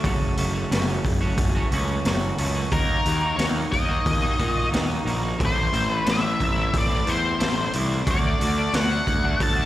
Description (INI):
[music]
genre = quiet-loud alternative rock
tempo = 90 BPM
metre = 4/4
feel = straight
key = unclear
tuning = A4 = 440 Hz
[part]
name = twelve-string electric guitar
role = arpeggios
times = 0.0-9.7 s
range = F#2 to F#4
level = -29 LUFS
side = right 1 dB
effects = slapback echo
[part]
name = fuzz picked electric bass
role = bass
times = 0.0-9.7 s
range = F#1 to A#2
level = -25 LUFS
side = equal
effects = overdrive
[part]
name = raw garage drum kit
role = drums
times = 0.0-9.6 s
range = hi-hat, kick drum, snare drum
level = -25 LUFS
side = equal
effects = none
[part]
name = octave-fuzz lead guitar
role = melody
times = 2.7-9.7 s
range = A#4 to A5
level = -26 LUFS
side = left 2 dB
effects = distortion, slapback echo, tape echo
[sound]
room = small room ambience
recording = live gig heard through the venue's PA, recital hall reverb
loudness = -20 LUFS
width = side -14 dB against mid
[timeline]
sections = 0.0-9.7 A section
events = none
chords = 0.0 F#m; 2.7 D#m; 5.4 Am; 8.1 D